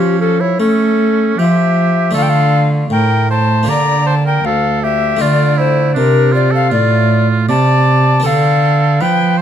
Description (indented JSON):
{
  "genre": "classical, baroque-style sonata movement with continuo",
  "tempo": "79 BPM",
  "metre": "4/4",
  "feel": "rubato",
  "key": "D minor",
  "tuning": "A4 = 440 Hz",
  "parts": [
    { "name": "tenor recorder", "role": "melody", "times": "0.0-9.4 s", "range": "G4 to Bb5", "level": "-16 LUFS", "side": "left 8 dB", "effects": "none" },
    { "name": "clear oboe", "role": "second line", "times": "0.0-9.4 s", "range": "C#4 to D5", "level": "-18 LUFS", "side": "right 6 dB", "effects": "none" },
    { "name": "harpsichord", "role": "accompaniment", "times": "0.0-9.4 s", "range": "D2 to A4", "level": "-20 LUFS", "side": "left 1 dB", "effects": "none" },
    { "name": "dark cello", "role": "bass", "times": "0.0-9.4 s", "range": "D2 to A3", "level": "-14 LUFS", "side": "right 3 dB", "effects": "none" }
  ],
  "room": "moderate recital hall reverb, RT60 1.5 s",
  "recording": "close, detailed microphones",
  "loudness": "-10 LUFS",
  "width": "side -9 dB against mid",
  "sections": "0.0-9.4 A section",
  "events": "none",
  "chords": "0.0 A7; 2.2 Dm; 3.7 Gm/D; 5.2 Dm; 8.3 Bm7b5/D",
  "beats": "0.60 1.39 | 2.16 2.92 3.68 4.45 | 5.21 5.97 6.72 7.50 | 8.25 9.01"
}